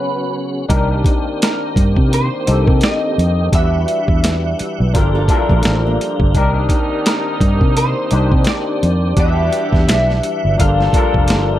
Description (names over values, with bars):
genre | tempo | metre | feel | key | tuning
R&B, neo-soul | 85 BPM | 4/4 | swing 58% on 16ths | unclear | A4 = 440 Hz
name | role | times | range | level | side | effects
electric guitar through a small old amp | melody | 0.0-11.6 s | Bb4 to F5 | -21 LUFS | equal | ensemble chorus, slapback echo
barky tine electric piano | accompaniment | 0.0-11.6 s | C4 to C#5 | -21 LUFS | left 3 dB | ensemble chorus, plate reverb
tonewheel organ | sustained chords | 0.0-11.6 s | C#3 to F#5 | -26 LUFS | right 1 dB | fast rotary speaker, chorus vibrato
vintage muted fingered electric bass | bass | 0.7-11.6 s | F1 to C3 | -16 LUFS | equal | none
boom bap sampler-style drum kit | drums | 0.7-11.5 s | hi-hat, kick drum, snare drum | -16 LUFS | equal | none
nylon-string guitar | second line | 5.0-6.3 s | Bb3 to A4 | -25 LUFS | right 7 dB | none
warm horn section | stabs | 6.3-11.6 s | Eb3 to A4 | -27 LUFS | right 5 dB | plate reverb
room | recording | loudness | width
light reverb | none | -13 LUFS | side -13 dB against mid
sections
0.7-11.6 A section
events
break 0.0-0.7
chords
0.0 G#m11; 0.7 Cm9; 3.5 Em9; 4.9 Gm9; 6.3 Cm9; 9.2 Em9; 10.6 Gm9